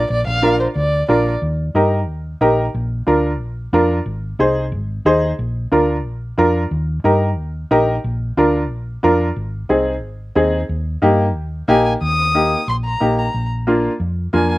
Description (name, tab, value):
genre	latin, cumbia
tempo	181 BPM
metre	4/4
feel	straight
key	Eb major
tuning	A4 = 440 Hz
part	dark violin	melody	0.0-1.3, 11.7-14.6 s	C5 to Eb6	-20 LUFS	equal	slapback echo
part	hollow-body short-scale fingered electric bass	bass	0.0-14.6 s	Ab1 to G2	-21 LUFS	equal	none
part	clear upright piano	accompaniment	0.4-14.6 s	Bb3 to C5	-15 LUFS	equal	none
room	little or no reverb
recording	recorded outdoors, with no room sound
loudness	-15 LUFS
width	side -18 dB against mid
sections	0.0-1.4 A section; 1.4-12.0 B section; 12.0-14.6 C section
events	none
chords	0.0 Bb; 1.4 Eb; 2.7 Bb; 4.1 Ab; 5.4 Bb; 6.7 Eb; 8.0 Bb; 9.4 Ab; 10.7 Eb; 13.3 Bb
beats	| 0.10 0.43 0.76 1.09 | 1.42 1.75 2.08 2.41 | 2.74 3.07 3.40 3.73 | 4.07 4.40 4.73 5.06 | 5.39 5.72 6.05 6.38 | 6.72 7.05 7.38 7.71 | 8.04 8.37 8.70 9.03 | 9.37 9.70 10.03 10.36 | 10.69 11.02 11.35 11.68 | 12.02 12.35 12.68 13.01 | 13.34 13.67 14.00 14.34